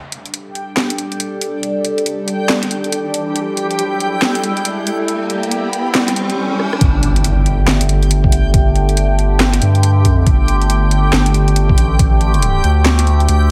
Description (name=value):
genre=deep dubstep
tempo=139 BPM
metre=4/4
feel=swing 62% on 16ths, half-time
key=unclear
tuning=A4 = 440 Hz
part: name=overtone-sweeping drone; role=sustained chords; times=0.3-13.5 s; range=D3 to A4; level=-23 LUFS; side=equal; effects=chorus, built-in reverb, phaser
part: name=riser, swell and impact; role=sound effects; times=0.0-8.5 s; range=none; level=-26 LUFS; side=equal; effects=none
part: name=backwards swelling texture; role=texture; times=0.5-13.5 s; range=G4 to G5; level=-26 LUFS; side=equal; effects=built-in reverb
part: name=garage drum kit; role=drums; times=0.1-13.4 s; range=handclaps, hi-hat, rim click, snare drum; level=-21 LUFS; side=equal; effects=overdrive
part: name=saturated sub bass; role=bass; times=6.8-13.5 s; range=G1 to G2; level=-16 LUFS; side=equal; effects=none
part: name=electronic kick drum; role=drums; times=6.8-12.1 s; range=none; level=-15 LUFS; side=equal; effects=none
room=light reverb, digital ambience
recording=none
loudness=-15 LUFS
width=mono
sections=0.0-6.8 A section; 6.8-13.5 B section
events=build-up 0.0-6.8; riser 0.0-6.8; swell 5.9-6.8; drum fill 6.6; drop 6.8-13.5; impact 6.8-8.5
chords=0.0 Gsus2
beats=0.34 0.77 1.20 | 1.63 2.06 2.50 2.93 | 3.36 3.79 4.22 4.65 | 5.08 5.52 5.95 6.38 | 6.81 7.24 7.67 8.11 | 8.54 8.97 9.40 9.83 | 10.27 10.70 11.13 11.56 | 11.99 12.42 12.86 13.29